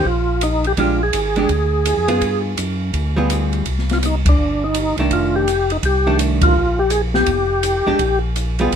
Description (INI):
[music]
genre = soul jazz organ trio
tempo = 166 BPM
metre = 4/4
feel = swing 64% on 8ths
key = Bb mixolydian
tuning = A4 = 440 Hz
[part]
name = percussive tonewheel organ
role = melody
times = 0.0-8.2 s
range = D4 to Ab4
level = -18 LUFS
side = equal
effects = slow rotary speaker, overdrive, chorus vibrato
[part]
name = archtop guitar, miked and amplified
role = accompaniment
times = 0.0-8.7 s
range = Eb3 to Ab4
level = -20 LUFS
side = right 3 dB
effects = none
[part]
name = tonewheel organ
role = bass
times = 0.1-8.8 s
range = F1 to G2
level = -20 LUFS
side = equal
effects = overdrive, chorus vibrato, slow rotary speaker
[part]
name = open jazz drum kit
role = drums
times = 0.1-8.8 s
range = hi-hat, kick drum, ride cymbal, snare drum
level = -22 LUFS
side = equal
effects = none
[sound]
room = light reverb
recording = minimal, uncompressed stereo recording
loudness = -15 LUFS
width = side -8 dB against mid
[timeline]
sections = 0.0-8.8 A section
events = band accent 4.2, 6.4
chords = 0.0 Ebsus2; 0.8 Bb6; 2.2 G7b9; 3.7 Cm; 5.1 F13; 6.5 Bb5